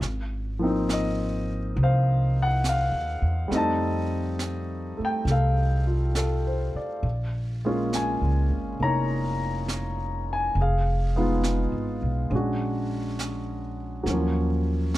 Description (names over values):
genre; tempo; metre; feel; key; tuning
jazz ballad; 68 BPM; 4/4; swing 68% on 8ths; unclear; A4 = 440 Hz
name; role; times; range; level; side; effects
warm concert grand piano; accompaniment; 0.0-15.0 s; F3 to Bb5; -26 LUFS; left 1 dB; none
upright bass; bass; 0.0-15.0 s; F1 to F2; -26 LUFS; equal; none
jazz brush drum kit; drums; 0.0-15.0 s; brushed snare drum, hi-hat, snare drum; -36 LUFS; right 3 dB; none
room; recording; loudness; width
little or no reverb; dark, warm production; -23 LUFS; side -16 dB against mid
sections
0.0-15.0 A section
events
none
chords
0.0 Ab69; 3.5 F7; 7.0 Bbm7; 10.6 Fm7b5; 12.3 Bb7alt; 14.1 Ebm9